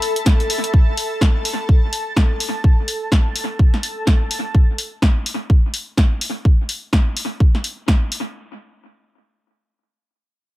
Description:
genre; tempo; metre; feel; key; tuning
piano house; 126 BPM; 4/4; swing 59% on 16ths; unclear; A4 = 440 Hz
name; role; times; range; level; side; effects
analog string pad; sustained chords; 0.0-4.6 s; A4 to A5; -27 LUFS; equal; ensemble chorus, sidechain pumping
punchy analog drum machine; drums; 0.0-8.2 s; hi-hat, snare drum; -22 LUFS; equal; analog delay
granular cloud pad; texture; 0.0-0.7 s; A4 to B5; -27 LUFS; left 2 dB; built-in reverb, sidechain pumping
electronic kick drum; drums; 0.3-8.0 s; none; -14 LUFS; equal; none
room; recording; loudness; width
small room reverb; echo-heavy mix; -16 LUFS; side -17 dB against mid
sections
0.0-8.4 A section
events
none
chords
0.0 F#m7 (rootless); 0.7 N.C.

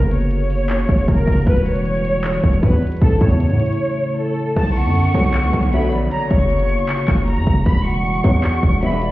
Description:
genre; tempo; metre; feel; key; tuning
hip hop, trap; 155 BPM; 4/4; half-time; B minor; A4 = 440 Hz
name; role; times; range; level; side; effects
warm studio violin section; melody; 0.0-9.0 s; A4 to C#6; -23 LUFS; equal; ping-pong delay
dark analog pad; sustained chords; 0.0-9.1 s; C#3 to A4; -23 LUFS; equal; chorus
distorted 808-style bass; bass; 0.0-9.1 s; E1 to A2; -18 LUFS; equal; distortion
trap drum kit; drums; 0.0-9.1 s; handclaps, hi-hat, kick drum; -17 LUFS; equal; none
downlifter; sound effects; 4.6-7.7 s; none; -40 LUFS; equal; none
breathy large pan pipes; second line; 4.8-9.1 s; C#5 to F#5; -25 LUFS; right 1 dB; ping-pong delay
warm brass ensemble; stabs; 5.1-9.1 s; B1 to F#3; -24 LUFS; left 3 dB; ping-pong delay
room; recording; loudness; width
studio ambience; heard muffled through a wall, stone room reverb, EQ; -15 LUFS; side -16 dB against mid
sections
0.0-4.6 A section; 4.6-9.1 B section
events
break 3.8-4.6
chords
0.0 F#; 1.5 Emadd9; 3.0 A; 4.6 Bm7; 6.1 F#; 7.7 Emadd9

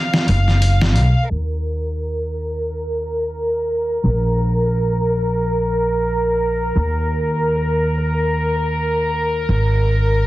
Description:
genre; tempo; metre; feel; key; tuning
trip hop; free time; none; none; Eb minor; A4 = 440 Hz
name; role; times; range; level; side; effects
warm studio violin section; sustained chords; 0.0-10.3 s; Bb4 to F5; -20 LUFS; equal; low-pass filter
trip hop sampler-style drum kit; drums; 0.1-1.1 s; hi-hat, snare drum; -20 LUFS; equal; none
upright bass; bass; 0.3-10.3 s; Gb1 to Eb2; -19 LUFS; equal; none
room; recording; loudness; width
light reverb, small room ambience; heavily compressed radio sound, multiband compression, vinyl crackle, low-pass filter; -16 LUFS; side -16 dB against mid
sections
0.0-1.3 A section; 1.3-10.3 B section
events
filter sweep on violin section 1.3-10.3; filter sweep 1.3-10.3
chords
0.0 N.C.; 1.3 Eb5; 4.0 N.C.; 6.8 Eb5; 9.5 Absus2

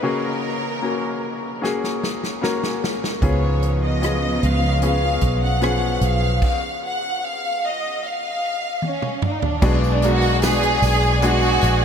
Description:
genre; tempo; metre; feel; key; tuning
pop ballad; 75 BPM; 4/4; straight; unclear; A4 = 440 Hz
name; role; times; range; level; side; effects
rich studio violin section; melody; 0.0-11.8 s; C#4 to F#5; -23 LUFS; equal; diffuse ambient delay
clear concert grand piano; accompaniment; 0.0-11.8 s; G#2 to B4; -24 LUFS; left 3 dB; none
downlifter; sound effects; 0.0-3.2 s; none; -42 LUFS; equal; none
natural country drum kit; drums; 1.6-11.8 s; crash cymbal, hi-hat, kick drum, rim click, snare drum, toms; -25 LUFS; right 1 dB; none
rich symphonic string section; sustained chords; 3.2-11.8 s; C#3 to G#5; -28 LUFS; right 1 dB; none
vintage muted fingered electric bass; bass; 3.2-11.8 s; A#1 to C#2; -20 LUFS; right 1 dB; none
tambourine; percussion; 9.6-11.8 s; none; -39 LUFS; right 11 dB; none
room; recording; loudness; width
moderate huge ambient reverb, RT60 8.6 s; dreamy mix soaked in reverb; -18 LUFS; side -7 dB against mid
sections
0.0-9.6 A section; 9.6-11.8 B section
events
drum fill 1.6-3.2, 8.8-9.6; stop 6.4-9.6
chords
0.0 F#add9; 3.2 C#7; 9.6 Bm6

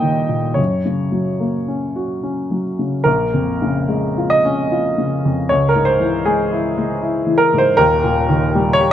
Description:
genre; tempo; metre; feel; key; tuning
neoclassical minimalist piano; 69-79 BPM; 3/4; rubato; Bb minor; A4 = 440 Hz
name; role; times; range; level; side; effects
warm upright piano; solo; 0.0-8.9 s; Eb1 to G5; -15 LUFS; equal; none
room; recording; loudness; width
light reverb; dark, warm production; -15 LUFS; side -10 dB against mid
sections
0.0-3.1 A section; 3.1-8.9 A section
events
none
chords
0.0 Eb; 0.6 Gb; 3.1 Bbm7; 5.5 Dbm; 7.8 Eb

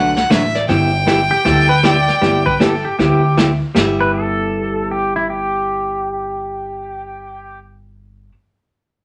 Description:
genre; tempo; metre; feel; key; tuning
country, western swing; 156 BPM; 4/4; swing 63% on 8ths; G major; A4 = 441 Hz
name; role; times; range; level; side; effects
clear fiddle; melody; 0.0-3.3 s; D5 to G5; -20 LUFS; equal; none
vintage hollow-body jazz guitar; accompaniment; 0.0-8.3 s; D3 to B4; -21 LUFS; equal; none
upright bass; bass; 0.0-8.3 s; G1 to D2; -24 LUFS; equal; none
vintage brush drum kit; drums; 0.2-4.1 s; brushed snare drum, hi-hat, kick drum, snare drum, splash cymbal; -22 LUFS; equal; none
pedal steel guitar; second line; 1.3-7.6 s; E4 to D5; -22 LUFS; equal; none
room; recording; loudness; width
wet studio reverb, RT60 0.5 s; none; -16 LUFS; mono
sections
0.0-3.8 A section; 3.8-6.8 B section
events
none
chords
0.0 D6; 0.7 G6

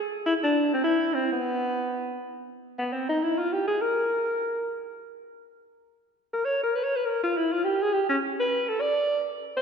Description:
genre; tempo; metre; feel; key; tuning
jazz; 203 BPM; 4/4; swing 61% on 8ths; unclear; A4 = 440 Hz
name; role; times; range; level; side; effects
breathy alto saxophone; solo; 0.0-9.6 s; B3 to D5; -24 LUFS; equal; none
room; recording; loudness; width
wet concert hall reverb, RT60 2.4 s; heard from further back in the room; -24 LUFS; side -6 dB against mid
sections
0.0-2.6 A section; 2.6-9.6 B section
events
alto saxophone solo 2.6-9.6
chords
none

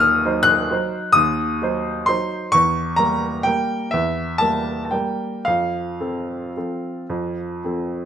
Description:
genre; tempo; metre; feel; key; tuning
classical, piano waltz; 108-138 BPM; 3/4; rubato; unclear; A4 = 440 Hz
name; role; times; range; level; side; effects
warm upright piano; solo; 0.0-8.1 s; Eb2 to Gb6; -18 LUFS; equal; none
room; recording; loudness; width
light reverb; minimal, uncompressed stereo recording; -18 LUFS; side -8 dB against mid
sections
0.0-8.1 A section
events
none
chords
0.0 Cdim/Eb; 2.5 Edim7; 5.5 F

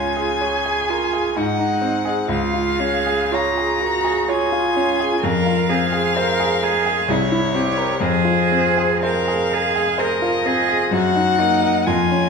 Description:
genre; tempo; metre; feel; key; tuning
classical, slow romantic movement for piano trio; 63 BPM; 3/4; uneven beats, rubato; unclear; A4 = 440 Hz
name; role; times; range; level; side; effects
rich violin; melody; 0.0-12.3 s; C5 to Bb5; -22 LUFS; left 4 dB; none
rich cello; second line; 0.0-12.3 s; Eb4 to Bb4; -21 LUFS; right 7 dB; none
clear concert grand piano; accompaniment; 0.0-12.3 s; C2 to Db5; -20 LUFS; left 2 dB; none
room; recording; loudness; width
wet recital hall reverb, RT60 1.6 s; minimal, uncompressed stereo recording; -16 LUFS; side -5 dB against mid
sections
0.0-12.3 A section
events
none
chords
0.0 Db; 1.4 Ab7; 2.3 Db; 5.2 Fm; 7.1 C7; 8.0 Fm; 10.9 Ebm/Gb

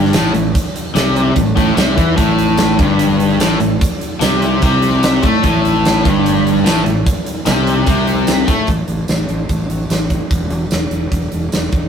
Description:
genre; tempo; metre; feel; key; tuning
classic rock; 148 BPM; 4/4; straight; unclear; A4 = 440 Hz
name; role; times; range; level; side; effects
cranked stack guitar; riff; 0.0-8.7 s; G2 to A3; -16 LUFS; left 6 dB; overdrive
distorted electric guitar; riff; 0.0-8.7 s; G2 to A3; -18 LUFS; right 6 dB; distortion
fuzz fingered electric bass; bass; 0.0-11.9 s; E1 to A2; -18 LUFS; right 1 dB; overdrive
huge arena drum kit; drums; 0.1-11.8 s; hi-hat, kick drum, snare drum, tambourine; -17 LUFS; right 1 dB; none
room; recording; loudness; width
moderate studio reverb, RT60 0.6 s; rough rehearsal-room recording, warm saturation; -12 LUFS; side -7 dB against mid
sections
0.0-8.7 A section; 8.7-11.9 B section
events
none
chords
0.0 A5; 8.7 N.C.

